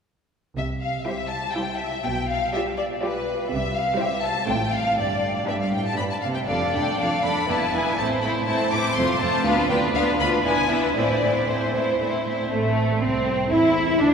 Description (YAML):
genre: quick classical-period movement for string orchestra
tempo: 121 BPM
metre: 3/4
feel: rubato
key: C major, A minor from 6.5 s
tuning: A4 = 439 Hz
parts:
  - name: rich studio violin section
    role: melody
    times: 0.6-14.1 s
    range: A3 to D6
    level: -25 LUFS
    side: left 2 dB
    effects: none
  - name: rich studio cello section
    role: bass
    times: 0.6-14.1 s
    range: D2 to E4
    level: -28 LUFS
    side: right 2 dB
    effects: none
  - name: rich studio double bass section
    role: bass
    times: 0.6-14.1 s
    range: E1 to E2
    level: -32 LUFS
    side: right 2 dB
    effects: none
  - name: rich studio violin section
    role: second line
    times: 1.1-14.1 s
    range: A3 to D5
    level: -26 LUFS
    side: left 1 dB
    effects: none
  - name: rich studio viola section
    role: accompaniment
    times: 1.1-14.1 s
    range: G3 to F4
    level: -28 LUFS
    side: right 1 dB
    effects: none
room: wet cathedral reverb, RT60 5.8 s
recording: heard from further back in the room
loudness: -20 LUFS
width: side -6 dB against mid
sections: 0.6-12.5 A section; 12.5-14.1 B section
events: none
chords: 0.6 C; 2.1 G7/B; 3.5 C; 4.5 F/A; 5.0 G; 6.5 Dm/F; 7.5 E; 8.0 Am; 9.0 F; 9.5 Bdim/D; 10.4 E7; 11.0 Am; 13.5 N.C.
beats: | 0.57 1.07 1.57 | 2.06 2.56 3.04 | 3.52 4.01 4.49 | 4.99 5.49 5.99 | 6.49 7.00 7.50 | 7.99 8.47 8.97 | 9.46 9.95 10.44 | 10.96 11.48 11.99 | 12.51 13.01 13.51 | 14.01